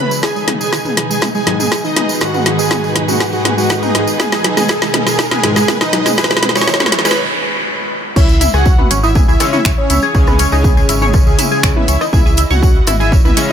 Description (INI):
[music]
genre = melodic techno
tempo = 121 BPM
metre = 4/4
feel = straight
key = C# minor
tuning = A4 = 441 Hz
[part]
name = wide unison lead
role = melody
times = 0.0-13.5 s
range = C#4 to C#5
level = -20 LUFS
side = equal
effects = ping-pong delay
[part]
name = soft supersaw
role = second line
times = 0.0-13.5 s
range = C#5 to C#6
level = -24 LUFS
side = equal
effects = phaser, cassette tape, sidechain pumping, tape echo
[part]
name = evolving wavetable pad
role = sustained chords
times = 0.0-7.1 s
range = B2 to G#4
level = -25 LUFS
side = right 1 dB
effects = phaser, built-in reverb, vintage 12-bit sampler grit, sidechain pumping
[part]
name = tight sequenced synth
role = arpeggios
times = 0.0-13.5 s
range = D#3 to C#6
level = -21 LUFS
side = right 1 dB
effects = chorus, phaser, sidechain pumping, tape echo
[part]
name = riser and noise sweep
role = sound effects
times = 0.2-8.2 s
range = none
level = -24 LUFS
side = right 1 dB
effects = none
[part]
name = muted studio string section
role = texture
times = 0.0-13.5 s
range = D#4 to G#5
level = -26 LUFS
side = right 1 dB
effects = sidechain pumping
[part]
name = tambourine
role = percussion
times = 0.1-13.5 s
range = none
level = -25 LUFS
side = right 3 dB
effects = none
[part]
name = deep house drum kit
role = drums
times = 0.2-13.5 s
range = crash cymbal, finger snaps, hi-hat, rim click, snare drum, toms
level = -17 LUFS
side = equal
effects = none
[part]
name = electronic kick drum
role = drums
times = 0.2-13.2 s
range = none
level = -13 LUFS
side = equal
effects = high-pass filter on kick, high-pass filter on room
[part]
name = sync-sweep polysynth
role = stabs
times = 1.5-5.6, 9.4-13.5 s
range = G#2 to C#4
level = -22 LUFS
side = left 3 dB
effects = chorus, sidechain pumping, tape echo
[part]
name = round analog bass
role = bass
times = 8.2-13.3 s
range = G#1 to C#2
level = -15 LUFS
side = equal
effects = sidechain pumping
[sound]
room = light reverb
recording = none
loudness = -11 LUFS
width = side -8 dB against mid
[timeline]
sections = 0.0-8.2 A section; 8.2-13.5 B section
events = build-up 0.0-8.2; drum fill 0.0-7.2; filter sweep on synth arpeggio sound 0.0-8.2; filter sweep on analog polysynth 0.0-8.2; filter sweep on ambient pad 0.0-8.2; noise sweep 6.2-8.2; break 7.2-8.2; drop 8.2-13.5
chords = 0.2 G#m; 8.2 C#m